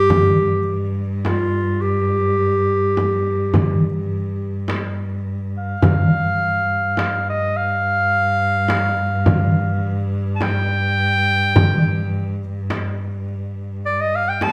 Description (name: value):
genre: Turkish makam ensemble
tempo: 105 BPM (eighths)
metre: 10/8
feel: straight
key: unclear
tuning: A4 = 441 Hz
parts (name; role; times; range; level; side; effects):
- clear clarinet; melody; 0.0-14.5 s; F4 to A5-28c; -22 LUFS; equal; none
- clear cello; drone; 0.0-14.5 s; G2; -25 LUFS; equal; none
- darbuka; percussion; 0.1-14.5 s; none; -24 LUFS; equal; none
- frame drum; percussion; 0.1-14.5 s; none; -23 LUFS; equal; none
room: wet large studio reverb, RT60 1.2 s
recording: band playing live in one room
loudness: -19 LUFS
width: mono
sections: 0.0-14.5 A section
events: none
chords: none